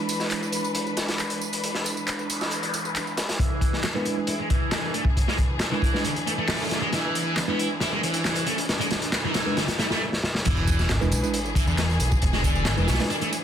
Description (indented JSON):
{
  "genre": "breakbeat, breaks",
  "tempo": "136 BPM",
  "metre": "4/4",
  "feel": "straight",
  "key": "E mixolydian",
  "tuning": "A4 = 441 Hz",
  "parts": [
    { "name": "clear studio string section", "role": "sustained chords", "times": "0.0-13.4 s", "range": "E3 to B4", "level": "-32 LUFS", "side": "left 2 dB", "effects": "vintage 12-bit sampler grit, sidechain pumping" },
    { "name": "mellow tine electric piano", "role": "stabs", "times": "0.0-13.1 s", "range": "G#3 to B4", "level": "-30 LUFS", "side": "right 2 dB", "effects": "medium stereo tremolo, low-pass filter, digital delay" },
    { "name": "crunchy breakbeat drum kit", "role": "drums", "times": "0.1-13.4 s", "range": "crash cymbal, hi-hat, kick drum, snare drum", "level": "-26 LUFS", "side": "equal", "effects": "high-pass filter on kick, high-pass filter on hats, high-pass filter on cymbals, high-pass filter on snare, high-pass filter on room" },
    { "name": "electronic tambourine and handclaps", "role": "drums", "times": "0.1-13.4 s", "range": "none", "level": "-33 LUFS", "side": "right 2 dB", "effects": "high-pass filter on perc, high-pass filter on snare" },
    { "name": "noise sweep, riser and sub drop", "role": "sound effects", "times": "2.0-12.2 s", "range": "none", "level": "-35 LUFS", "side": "equal", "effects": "none" },
    { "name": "sludgy distorted guitar", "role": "riff", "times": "3.4-13.3 s", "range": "D3 to E4", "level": "-28 LUFS", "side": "right 1 dB", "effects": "overdrive, low-pass filter, digital delay" },
    { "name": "overdriven picked electric bass", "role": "bass", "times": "10.5-13.0 s", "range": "E1 to E2", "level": "-24 LUFS", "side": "equal", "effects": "none" }
  ],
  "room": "moderate studio reverb, RT60 0.6 s",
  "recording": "dense, heavily limited modern master",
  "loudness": "-22 LUFS",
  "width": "side -9 dB against mid",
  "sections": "0.0-3.4 A section; 3.4-10.5 B section; 10.5-13.4 C section",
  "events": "noise sweep 2.0-3.4; build-up 3.4-10.5; filter sweep on distorted electric guitar 3.4-10.5; riser 3.5-10.0; drum fill 6.9-10.0, 10.1-10.5; drop 10.5-13.4; impact 10.5-12.2",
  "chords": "0.0 E7"
}